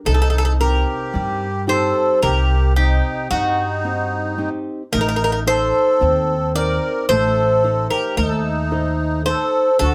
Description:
greek folk, Greek bouzouki band; 111 BPM (eighths); 9/8; straight; A4 = 440 Hz
Greek bouzouki; melody; 0.1-9.9 s; F#4 to D5; -22 LUFS; equal; plate reverb
accordion; second line; 0.1-9.9 s; Eb4 to Bb4; -27 LUFS; equal; light tremolo tuning
nylon-string guitar; accompaniment; 0.1-9.9 s; C3 to C5; -28 LUFS; equal
upright bass; bass; 0.1-9.9 s; A1 to G2; -23 LUFS; equal
wet small room reverb, RT60 0.5 s; heard from further back in the room; -19 LUFS; mono
0.0-9.9 A section
0.1 Cm; 4.9 Adim

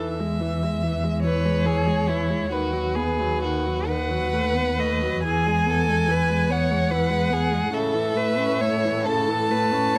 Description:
classical, slow romantic movement for string quartet; 42-50 BPM (dotted quarters); 6/8; rubato; E major; A4 = 442 Hz
warm violin; melody; 0.0-10.0 s; B4 to A5; -29 LUFS; equal
dark viola; accompaniment; 0.0-10.0 s; C#3 to C#4; -31 LUFS; equal
warm cello; bass; 0.0-10.0 s; D#2 to A2; -28 LUFS; equal
rich violin; second line; 1.2-10.0 s; E4 to C#5; -28 LUFS; equal
light reverb; close, detailed microphones; -23 LUFS; mono
0.0-10.0 A section
0.0 E; 2.5 B/D#; 3.9 B7/D#; 5.3 E; 7.7 A

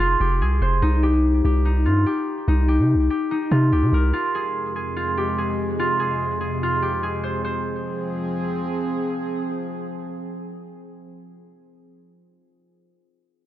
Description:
hip hop, drill; 145 BPM; 4/4; half-time; F minor; A4 = 440 Hz
concert harp; melody; 0.0-9.4 s; Eb4 to C5; -22 LUFS; equal; low-pass filter, analog delay
long sustained 808-style bass; bass; 0.0-4.1 s; F1 to C3; -18 LUFS; equal
warbly tape-like pad; sustained chords; 4.1-11.5 s; F2 to Ab4; -27 LUFS; equal; chorus, built-in reverb
small room ambience; echo-heavy mix; -20 LUFS; side -12 dB against mid
0.0-4.1 A section; 4.1-7.4 B section; 7.4-10.8 C section
0.0 Fm; 0.8 C5; 4.1 Fm

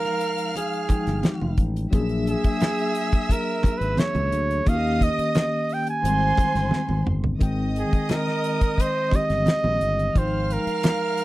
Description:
lush 1970s-style soul; 88 BPM; 4/4; straight; Ab major; A4 = 440 Hz
clear flugelhorn; melody; 0.0-11.2 s; Ab4 to Ab5; -25 LUFS; right 3 dB; slapback echo
warm studio violin section; second line; 0.0-11.2 s; C5 to F6; -32 LUFS; left 1 dB
tine electric piano; accompaniment; 0.0-11.2 s; Eb3 to G5; -27 LUFS; left 2 dB; medium tremolo
damped 70s drum kit; drums; 0.0-11.2 s; hi-hat, kick drum, snare drum, toms; -22 LUFS; equal
congas; percussion; 0.6-11.0 s; -30 LUFS; right 3 dB
fingered electric bass; bass; 0.9-10.7 s; F1 to Eb2; -26 LUFS; equal
light reverb; dry, close 1970s-style studio recording; -20 LUFS; side -17 dB against mid
0.0-7.4 A section; 7.4-11.2 A section
drum fill 6.7-7.4
0.0 Fm9; 1.9 Bb7alt; 4.7 Eb7; 6.0 Abmaj7; 10.2 Fm9

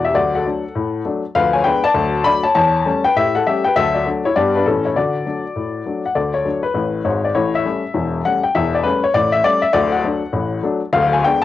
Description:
jazz, stride piano; 200 BPM; 4/4; swing 65% on 8ths; D major; A4 = 439 Hz
warm upright piano; solo; 0.0-11.4 s; D1 to B5; -15 LUFS; left 3 dB
moderate studio ambience, RT60 0.5 s; home recording on cassette; -15 LUFS; side -13 dB against mid
0.0-6.1 A section; 6.1-11.4 A section
0.1 D; 1.3 Ddim7; 1.9 D; 2.5 A7/E; 3.7 D; 4.3 G; 4.6 A; 4.9 D; 7.3 A7/E; 9.7 D; 10.9 Ddim7

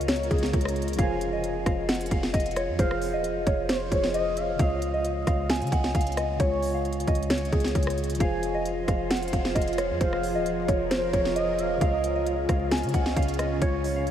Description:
hip hop, trap; 133 BPM; 4/4; half-time; F minor; A4 = 440 Hz
soft synth bell; melody; 0.0-14.1 s; Ab4 to Ab5; -29 LUFS; equal; chorus, phaser, tape echo
mellow tine electric piano; accompaniment; 0.0-14.1 s; Db3 to Db5; -31 LUFS; equal; medium stereo tremolo
glassy FM pad; sustained chords; 0.0-1.0, 8.6-14.1 s; Db3 to C5; -34 LUFS; right 1 dB; ensemble chorus, built-in reverb
warm 808-style bass; bass; 0.0-14.1 s; Eb1 to Db3; -32 LUFS; equal
trap drum kit; drums; 0.0-14.1 s; hi-hat, kick drum, rim click, snare drum; -28 LUFS; equal
gliding portamento lead; second line; 1.0-14.0 s; C5 to Ab5; -35 LUFS; right 3 dB; chorus, tape echo
wet huge ambient reverb, RT60 7.0 s; dreamy mix soaked in reverb, vinyl crackle; -23 LUFS; side -10 dB against mid
1.0-14.1 A section
0.0 Db; 1.0 Fm; 4.6 Db; 8.2 Fm; 11.8 Db

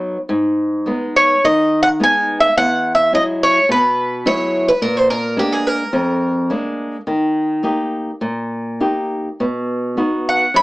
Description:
fado-style ballad; 106 BPM; 4/4; rubato; G# minor; A4 = 439 Hz
flamenco guitar; accompaniment; 0.0-10.6 s; E2 to G4; -18 LUFS; equal
Irish bouzouki; melody; 1.2-4.5, 10.3-10.6 s; B4 to B5; -13 LUFS; equal
picked twelve-string acoustic guitar; second line; 4.3-6.8 s; G4 to C#5; -18 LUFS; right 1 dB
moderate studio reverb, RT60 0.5 s; small speaker sound; -14 LUFS; side -21 dB against mid
0.3-10.6 A section
0.3 G#m; 2.6 Eadd9; 4.8 A#7; 7.1 D#; 9.4 B

